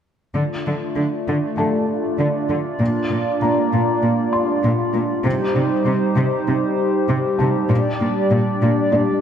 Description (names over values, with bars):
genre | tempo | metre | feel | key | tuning
cinematic | 98 BPM | 4/4 | straight | unclear | A4 = 439 Hz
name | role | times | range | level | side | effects
hollow soft pad | sustained chords | 0.3-9.2 s | G3 to D5 | -20 LUFS | equal | chorus
rich studio cello section | bass | 0.4-9.0 s | Bb2 to D3 | -21 LUFS | equal | none
felt-muted upright piano | texture | 1.6-9.2 s | D4 to C6 | -26 LUFS | left 2 dB | digital delay
room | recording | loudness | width
moderate scoring stage reverb, RT60 1.6 s | none | -17 LUFS | side -8 dB against mid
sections
0.4-9.2 A section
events
none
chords
0.4 Dm; 2.8 Bb; 5.3 Cm; 7.7 Gm/Bb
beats
| 0.35 0.97 1.58 2.19 | 2.80 3.42 4.03 4.64 | 5.25 5.86 6.48 7.09 | 7.70 8.31 8.93